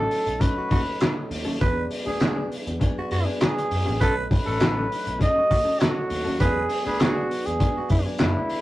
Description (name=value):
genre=funk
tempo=100 BPM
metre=4/4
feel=straight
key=unclear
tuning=A4 = 440 Hz
part: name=dark trumpet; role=melody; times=0.0-8.6 s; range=E4 to D#5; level=-26 LUFS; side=equal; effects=none
part: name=raspy tenor saxophone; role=second line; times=0.0-8.0 s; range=E4 to B4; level=-28 LUFS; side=right 2 dB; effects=none
part: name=mellow electric guitar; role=accompaniment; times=0.0-8.4 s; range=F#3 to A4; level=-33 LUFS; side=left 2 dB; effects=spring reverb
part: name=mellow tonewheel organ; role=sustained chords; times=0.0-8.6 s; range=F#3 to D#4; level=-33 LUFS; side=right 1 dB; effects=slow rotary speaker
part: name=vintage muted picked electric bass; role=bass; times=0.0-8.5 s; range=A1 to F#2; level=-30 LUFS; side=equal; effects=none
part: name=cloth-damped thuddy drum kit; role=drums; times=0.1-8.6 s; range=handclaps, hi-hat, kick drum, snare drum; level=-24 LUFS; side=equal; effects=none
room=moderate booth ambience, RT60 0.2 s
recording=rough rehearsal-room recording, tube saturation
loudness=-21 LUFS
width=side -16 dB against mid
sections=0.0-8.6 A section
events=none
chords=0.0 B9; 1.6 E9; 4.0 B9; 6.4 E9